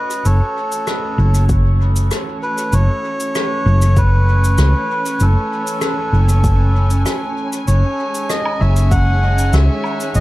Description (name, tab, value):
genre	ambient dub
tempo	97 BPM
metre	4/4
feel	straight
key	F# dorian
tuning	A4 = 437 Hz
part	melodica	melody	0.0-10.2 s	A4 to F#5	-21 LUFS	equal	dub echo
part	dark chamber string section	sustained chords	0.0-10.2 s	D#3 to G#5	-25 LUFS	right 1 dB	vintage 12-bit sampler grit
part	cabasa, rim click and woodblock	drums	0.1-10.2 s	none	-25 LUFS	left 1 dB	dub echo
part	hollow-body short-scale fingered electric bass	bass	0.3-10.2 s	F#1 to C#2	-12 LUFS	equal	none
part	electronic kick drum	drums	1.5-9.0 s	none	-18 LUFS	equal	overdrive
room	light reverb, studio reverb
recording	none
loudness	-13 LUFS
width	side -17 dB against mid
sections	0.0-10.2 A section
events	fade-in on string section 0.0-10.2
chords	0.0 F#m7; 7.7 C#sus2/F#